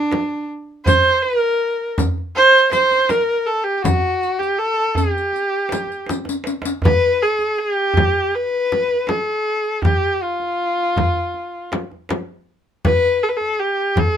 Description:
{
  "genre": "Persian modal ensemble",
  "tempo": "80 BPM",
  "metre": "4/4",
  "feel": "straight",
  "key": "G avaz esfahan",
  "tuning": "A4 = 442 Hz",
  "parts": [
    { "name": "rich kamancheh", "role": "melody", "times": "0.0-14.2 s", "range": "D4 to C5", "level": "-16 LUFS", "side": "equal", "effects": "none" },
    { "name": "frame drum", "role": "percussion", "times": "0.1-14.1 s", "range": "none", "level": "-21 LUFS", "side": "left 2 dB", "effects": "none" },
    { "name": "tombak", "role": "percussion", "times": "0.1-14.1 s", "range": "none", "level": "-22 LUFS", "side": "right 1 dB", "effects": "none" },
    { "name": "riq", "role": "percussion", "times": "0.9-6.8 s", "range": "none", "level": "-27 LUFS", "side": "left 3 dB", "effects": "none" }
  ],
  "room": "light reverb",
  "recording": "minimal, uncompressed stereo recording",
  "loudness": "-16 LUFS",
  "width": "side -9 dB against mid",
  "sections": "0.0-6.8 A section; 6.8-14.2 B section",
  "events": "drum fill 6.1-6.8",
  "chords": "none",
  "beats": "0.11 | 0.86 1.61 2.36 3.10 | 3.85 4.60 5.35 6.10 | 6.84 7.59 8.34 9.09 | 9.84 10.59 11.34 12.09 | 12.84 13.59"
}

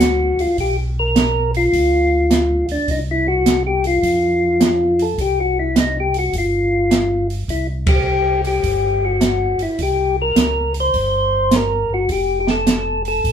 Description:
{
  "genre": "soul jazz organ trio",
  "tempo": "104 BPM",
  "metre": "4/4",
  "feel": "swing 66% on 8ths",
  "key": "C mixolydian",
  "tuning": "A4 = 437 Hz",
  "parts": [
    { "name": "percussive tonewheel organ", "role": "melody", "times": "0.0-13.3 s", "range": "D4 to C5", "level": "-17 LUFS", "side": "left 1 dB", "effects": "slow rotary speaker" },
    { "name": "mellow tonewheel organ", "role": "bass", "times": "0.0-13.3 s", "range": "F1 to F2", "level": "-22 LUFS", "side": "equal", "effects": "chorus vibrato, slow rotary speaker" },
    { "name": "open jazz drum kit", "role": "drums", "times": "0.0-13.3 s", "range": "hi-hat, kick drum, ride cymbal, snare drum", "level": "-20 LUFS", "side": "right 2 dB", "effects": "none" }
  ],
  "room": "wet small room reverb, RT60 0.6 s",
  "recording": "band playing live in one room",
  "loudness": "-15 LUFS",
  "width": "side -8 dB against mid",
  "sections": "0.0-7.5 A section; 7.5-13.3 A section",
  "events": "band accent 7.8",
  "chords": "0.0 G7#9 (rootless); 2.9 C(b5, no3); 4.0 F; 5.2 Cm; 6.3 Fsus2/G; 7.5 C5; 12.1 F",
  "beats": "0.00 | 0.57 1.15 1.73 2.30 | 2.88 3.45 4.03 4.60 | 5.18 5.76 6.33 6.91 | 7.48 8.06 8.64 9.21 | 9.79 10.36 10.94 11.52 | 12.09 12.67 13.24"
}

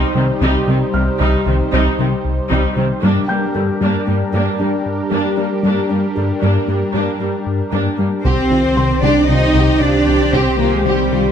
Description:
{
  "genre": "cinematic, hybrid orchestral and electronic film score",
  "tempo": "115 BPM",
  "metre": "5/4",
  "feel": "straight",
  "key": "C minor",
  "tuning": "A4 = 440 Hz",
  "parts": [
    { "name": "rich symphonic viola section", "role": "accompaniment", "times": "0.0-11.3 s", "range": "C3 to G4", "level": "-22 LUFS", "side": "right 1 dB", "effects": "none" },
    { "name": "brassy analog pad", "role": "sustained chords", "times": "0.0-11.3 s", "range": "Eb3 to C5", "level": "-20 LUFS", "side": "equal", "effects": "chorus" },
    { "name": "tight sequenced synth", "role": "arpeggios", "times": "0.0-11.3 s", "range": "C3 to G4", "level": "-24 LUFS", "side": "left 1 dB", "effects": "none" },
    { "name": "smooth synth bass", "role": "riff", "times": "0.0-11.3 s", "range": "C2 to G3", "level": "-20 LUFS", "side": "left 2 dB", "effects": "none" },
    { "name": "warm concert grand piano", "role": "texture", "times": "0.0-11.3 s", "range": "G5 to G6", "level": "-30 LUFS", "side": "left 1 dB", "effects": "none" },
    { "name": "rich symphonic cello section", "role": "bass", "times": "0.2-11.3 s", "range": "G2 to Eb4", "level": "-20 LUFS", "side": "right 2 dB", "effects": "none" },
    { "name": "mellow French horn section", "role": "sustained chords", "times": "8.2-11.3 s", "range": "G4 to C5", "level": "-24 LUFS", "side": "left 4 dB", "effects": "none" },
    { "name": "warm symphonic violin section", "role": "melody", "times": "8.3-11.2 s", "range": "F4 to G4", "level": "-24 LUFS", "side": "left 2 dB", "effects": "none" },
    { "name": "warm studio violin section", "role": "second line", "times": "8.3-11.3 s", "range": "G4 to Eb5", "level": "-23 LUFS", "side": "left 5 dB", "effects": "none" },
    { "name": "pure sine sub bass", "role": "bass", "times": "8.3-11.3 s", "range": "C2", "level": "-22 LUFS", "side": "equal", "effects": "none" },
    { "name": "rich studio double bass section", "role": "bass", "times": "8.3-11.2 s", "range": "C2", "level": "-23 LUFS", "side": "right 3 dB", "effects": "none" },
    { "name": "taiko ensemble", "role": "drums", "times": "8.3-9.3 s", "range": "none", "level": "-25 LUFS", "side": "right 1 dB", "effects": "none" }
  ],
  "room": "moderate scoring stage reverb, RT60 1.8 s",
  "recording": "none",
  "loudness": "-14 LUFS",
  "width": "side -8 dB against mid",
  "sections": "0.0-8.2 A section; 8.2-11.3 B section",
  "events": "build-up 0.0-8.2",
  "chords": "0.0 Cm; 3.0 Gm; 8.2 Cm",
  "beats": "| 0.42 0.94 1.46 1.99 2.51 | 3.03 3.55 4.07 4.59 5.12 | 5.64 6.16 6.68 7.20 7.72 | 8.25 8.77 9.29 9.81 10.33 | 10.86"
}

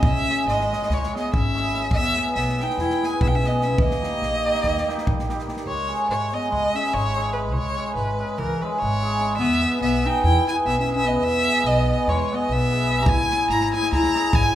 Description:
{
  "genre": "balkan folk, Balkan wedding band",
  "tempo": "291 BPM (eighths)",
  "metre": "9/8",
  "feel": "straight",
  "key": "unclear",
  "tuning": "A4 = 440 Hz",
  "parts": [
    { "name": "rich violin", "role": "melody", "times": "0.0-14.6 s", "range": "Bb4 to Bb5", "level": "-24 LUFS", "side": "right 1 dB", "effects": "none" },
    { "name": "warm clarinet", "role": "second line", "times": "0.0-14.5 s", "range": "Fb3 to G4", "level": "-27 LUFS", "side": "left 3 dB", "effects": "none" },
    { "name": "cimbalom", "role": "accompaniment", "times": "0.0-14.5 s", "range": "G3 to Ab4", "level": "-26 LUFS", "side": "right 1 dB", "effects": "none" },
    { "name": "upright bass", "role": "bass", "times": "0.0-14.6 s", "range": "Ab1 to E2", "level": "-26 LUFS", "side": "equal", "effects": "none" },
    { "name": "natural country drum kit", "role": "percussion", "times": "0.0-5.6, 13.1-14.4 s", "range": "kick drum, snare drum", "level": "-25 LUFS", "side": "equal", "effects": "none" }
  ],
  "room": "moderate recital hall reverb, RT60 1.4 s",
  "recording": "minimal, uncompressed stereo recording",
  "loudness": "-19 LUFS",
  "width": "side -12 dB against mid",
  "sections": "0.0-5.7 A section; 5.7-14.6 A section",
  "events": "none",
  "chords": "0.0 Dbm; 1.9 E; 3.8 Eb; 5.7 Dbm; 9.4 E; 13.1 Dbm",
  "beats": "| 0.04 0.25 0.46 0.66 0.87 1.08 1.29 1.50 1.71 | 1.92 2.12 2.33 2.54 2.75 2.96 3.17 3.37 3.58 | 3.79 4.00 4.21 4.41 4.62 4.83 5.04 5.24 5.45 | 5.66 5.86 6.07 6.28 6.48 6.69 6.90 7.10 7.31 | 7.52 7.72 7.93 8.13 8.34 8.55 8.75 8.96 9.16 | 9.37 9.58 9.78 9.99 10.19 10.40 10.60 10.81 11.01 | 11.22 11.42 11.63 11.83 12.04 12.24 12.45 12.65 12.86 | 13.06 13.27 13.47 13.68 13.88 14.08 14.29 14.49"
}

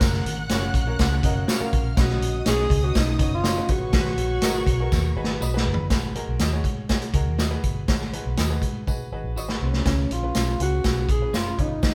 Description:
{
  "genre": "uptempo 1960s-style soul",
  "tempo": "122 BPM",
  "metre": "4/4",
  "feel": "straight",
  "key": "unclear",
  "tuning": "A4 = 440 Hz",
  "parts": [
    { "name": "breathy tenor saxophone", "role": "melody", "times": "0.0-5.4, 9.6-11.9 s", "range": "Db4 to Bb4", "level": "-30 LUFS", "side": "equal", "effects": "none" },
    { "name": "dark studio string section", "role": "second line", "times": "0.0-5.9 s", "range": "Cb5 to Gb6", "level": "-37 LUFS", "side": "equal", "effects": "none" },
    { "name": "clear upright piano", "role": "accompaniment", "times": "0.0-11.9 s", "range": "Ab2 to Db6", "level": "-36 LUFS", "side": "equal", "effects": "none" },
    { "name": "vintage muted fingered electric bass", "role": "bass", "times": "0.0-11.9 s", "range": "Gb1 to Ab2", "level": "-28 LUFS", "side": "equal", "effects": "none" },
    { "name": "vintage drum kit", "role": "drums", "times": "0.0-11.9 s", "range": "hi-hat, kick drum, snare drum, toms", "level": "-26 LUFS", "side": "equal", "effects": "none" },
    { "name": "tambourine", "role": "percussion", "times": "0.0-11.9 s", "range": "none", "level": "-43 LUFS", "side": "equal", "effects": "none" },
    { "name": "electric guitar at the edge of break-up", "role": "stabs", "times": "0.5-11.7 s", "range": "Db4 to Eb5", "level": "-38 LUFS", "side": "equal", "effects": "none" },
    { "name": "clear horn section", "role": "second line", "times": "3.9-4.1 s", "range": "Ab3 to Cb5", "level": "-39 LUFS", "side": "equal", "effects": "none" }
  ],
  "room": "moderate stone room reverb, RT60 1.1 s",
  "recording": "band playing live in one room",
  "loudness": "-23 LUFS",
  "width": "mono",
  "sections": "0.0-5.9 A section; 5.9-9.9 B section; 9.9-11.9 C section",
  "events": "band accent 3.9-5.9; drum fill 4.9-5.9, 8.9-9.9; upright piano fill 9.1-9.9",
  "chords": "0.0 Gb; 2.0 Cbadd9; 3.7 Abm7; 9.9 Db7",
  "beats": "| 0.01 0.50 0.99 1.48 | 1.97 2.46 2.96 3.45 | 3.94 4.43 4.92 5.42 | 5.91 6.40 6.89 7.39 | 7.88 8.38 8.87 9.36 | 9.86 10.35 10.84 11.33 | 11.82"
}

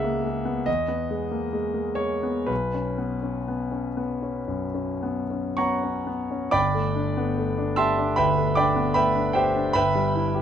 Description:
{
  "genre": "classical, impressionist solo piano",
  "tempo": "52-79 BPM",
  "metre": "4/4",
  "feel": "rubato",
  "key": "B major, G major from 6.5 s",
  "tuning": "A4 = 440 Hz",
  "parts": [
    { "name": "clear concert grand piano", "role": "solo", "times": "0.0-10.4 s", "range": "G1 to E6", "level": "-22 LUFS", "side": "equal", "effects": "none" }
  ],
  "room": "little or no reverb",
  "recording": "close, detailed microphones",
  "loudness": "-22 LUFS",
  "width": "side -9 dB against mid",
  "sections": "0.0-6.5 A section; 6.5-10.4 B section",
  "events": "none",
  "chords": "0.0 C#m7; 0.7 Emaj7; 2.5 Bsus2; 6.5 Gadd9; 9.7 Cmaj7/G (rootless)",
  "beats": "0.67 1.55 | 2.50 3.50 4.50 5.60 | 6.55 7.39 8.19 8.96 | 9.74"
}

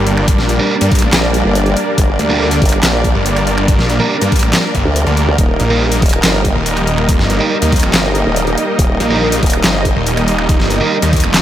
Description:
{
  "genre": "heavy wobble dubstep",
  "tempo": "141 BPM",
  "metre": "4/4",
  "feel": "half-time",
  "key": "G minor",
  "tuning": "A4 = 440 Hz",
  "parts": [
    { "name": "supersaw chords", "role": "sustained chords", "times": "0.0-11.4 s", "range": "G3 to Eb5", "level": "-17 LUFS", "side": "equal", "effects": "sidechain pumping, low-pass filter" },
    { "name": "snarling distorted saw bass", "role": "bass", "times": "0.0-11.4 s", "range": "Eb1 to G2", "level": "-15 LUFS", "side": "equal", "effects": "distortion, overdrive" },
    { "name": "dubstep drum kit", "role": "drums", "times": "0.1-11.4 s", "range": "finger snaps, handclaps, hi-hat, snare drum", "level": "-18 LUFS", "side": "equal", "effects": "overdrive, studio reverb" },
    { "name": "electronic kick drum", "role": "drums", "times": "0.3-11.2 s", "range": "none", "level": "-14 LUFS", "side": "equal", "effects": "overdrive, studio reverb" },
    { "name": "thick fuzz guitar", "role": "stabs", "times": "0.6-10.9 s", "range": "D4 to Bb4", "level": "-23 LUFS", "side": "right 3 dB", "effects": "none" },
    { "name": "formant-sweep wobble bass", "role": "bass", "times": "1.1-9.9 s", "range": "Eb1 to D2", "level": "-16 LUFS", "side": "equal", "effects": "chorus, overdrive" }
  ],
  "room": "moderate huge ambient reverb, RT60 8.9 s",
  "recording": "dreamy mix soaked in reverb",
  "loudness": "-11 LUFS",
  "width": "side -11 dB against mid",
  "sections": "0.0-11.4 A section",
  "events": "none",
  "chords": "0.0 Gm; 5.4 Eb",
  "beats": "| 0.28 0.70 1.13 1.55 | 1.98 2.41 2.83 3.26 | 3.68 4.11 4.53 4.96 | 5.38 5.81 6.24 6.66 | 7.09 7.51 7.94 8.36 | 8.79 9.21 9.64 10.07 | 10.49 10.92 11.34"
}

